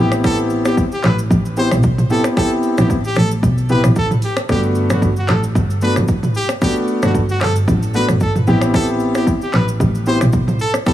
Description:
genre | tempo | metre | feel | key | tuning
afrobeats | 113 BPM | 4/4 | swing 55% on 16ths | unclear | A4 = 441 Hz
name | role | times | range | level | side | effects
brilliant trumpet | melody | 0.0-10.9 s | F#4 to C5 | -23 LUFS | equal | tape echo
warm concert grand piano | accompaniment | 0.0-10.9 s | A3 to G4 | -19 LUFS | equal | none
dark double bass | bass | 0.0-10.4 s | G1-21c to B1 | -17 LUFS | equal | none
deep house drum kit | drums | 0.1-10.9 s | finger snaps, handclaps, hi-hat, kick drum, rim click, shaker, toms | -19 LUFS | equal | overdrive
room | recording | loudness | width
studio reverb | heavily compressed radio sound, small room ambience | -14 LUFS | side -13 dB against mid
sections
0.0-10.9 A section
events
none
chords
0.0 Am7; 4.5 Gmaj7; 8.5 Am7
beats
| 0.24 0.78 1.31 1.84 | 2.37 2.90 3.43 3.96 | 4.49 5.02 5.55 6.08 | 6.62 7.15 7.68 8.21 | 8.74 9.27 9.80 10.33 | 10.86

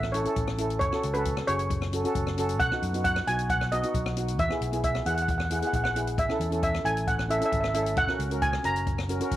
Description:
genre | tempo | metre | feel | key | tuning
calypso | 134 BPM | 4/4 | straight | A major | A4 = 439 Hz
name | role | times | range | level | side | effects
steel pan | melody | 0.0-9.4 s | B4 to A#5 | -28 LUFS | right 1 dB | none
fingered electric bass | bass | 0.0-9.4 s | F#1 to F#2 | -31 LUFS | equal | none
open jazz drum kit | drums | 0.0-9.4 s | hi-hat, kick drum, rim click | -33 LUFS | left 2 dB | none
steel pan | accompaniment | 0.1-9.4 s | B3 to A#4 | -31 LUFS | equal | none
room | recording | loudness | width
light reverb | 1960s-style stereo | -24 LUFS | side -14 dB against mid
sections
0.0-9.4 A section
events
none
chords
0.0 A; 0.8 F#madd9; 2.6 B; 4.4 E; 6.2 A; 8.0 F#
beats
0.36 | 0.81 1.26 1.70 2.15 | 2.60 3.04 3.49 3.94 | 4.39 4.83 5.28 5.73 | 6.18 6.63 7.08 7.52 | 7.97 8.42 8.87 9.32

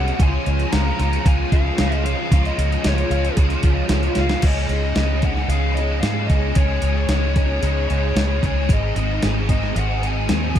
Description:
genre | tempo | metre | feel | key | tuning
rock, shoegaze and dream pop | 113 BPM | 4/4 | straight | Db major | A4 = 440 Hz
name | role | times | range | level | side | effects
fuzz lead guitar | melody | 0.0-10.6 s | Db5 to Bb5 | -28 LUFS | left 5 dB | distortion, slapback echo, plate reverb
overdriven electric guitar | riff | 0.0-10.6 s | Ab2 to Ab4 | -23 LUFS | equal | ensemble chorus
vintage muted fingered electric bass | bass | 0.0-10.6 s | Ab1 to Ab2 | -21 LUFS | equal | none
clean 12-bit digital drum machine | drums | 0.1-10.6 s | crash cymbal, hi-hat, kick drum, snare drum | -20 LUFS | equal | overdrive
room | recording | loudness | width
light reverb | dark, warm production | -17 LUFS | side -10 dB against mid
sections
0.0-4.4 A section; 4.4-10.6 B section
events
drum fill 4.2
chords
0.2 Db; 4.4 Dbsus2; 8.7 Ab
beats
| 0.20 0.73 1.26 1.79 | 2.32 2.85 3.38 3.91 | 4.45 4.98 5.51 6.04 | 6.57 7.10 7.63 8.16 | 8.70 9.23 9.77 10.30

